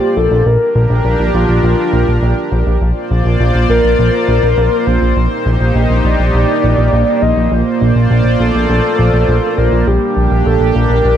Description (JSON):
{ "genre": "synthwave", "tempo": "102 BPM", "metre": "4/4", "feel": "straight", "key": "Bb major", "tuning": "A4 = 441 Hz", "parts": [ { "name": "soft octave-layered synth lead", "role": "melody", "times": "0.0-11.2 s", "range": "F4 to Eb5", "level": "-16 LUFS", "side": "left 1 dB", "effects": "chorus, phaser, ping-pong delay" }, { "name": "chorused pulse-width pad", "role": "sustained chords", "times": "0.0-11.2 s", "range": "Bb3 to D5", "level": "-16 LUFS", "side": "right 2 dB", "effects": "none" }, { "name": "fat analog bass", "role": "bass", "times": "0.2-11.2 s", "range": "Bb1", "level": "-13 LUFS", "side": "equal", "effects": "none" } ], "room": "light reverb", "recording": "none", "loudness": "-10 LUFS", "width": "side -10 dB against mid", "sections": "0.0-11.2 A section", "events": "none", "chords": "0.5 Gm/Bb; 2.8 Bbadd9; 5.2 Cm/Bb; 7.5 Bbadd9; 9.9 Gm/Bb", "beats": "| 0.46 1.05 1.64 2.22 | 2.81 3.40 3.99 4.58 | 5.17 5.75 6.34 6.93 | 7.52 8.11 8.70 9.28 | 9.87 10.46 11.05" }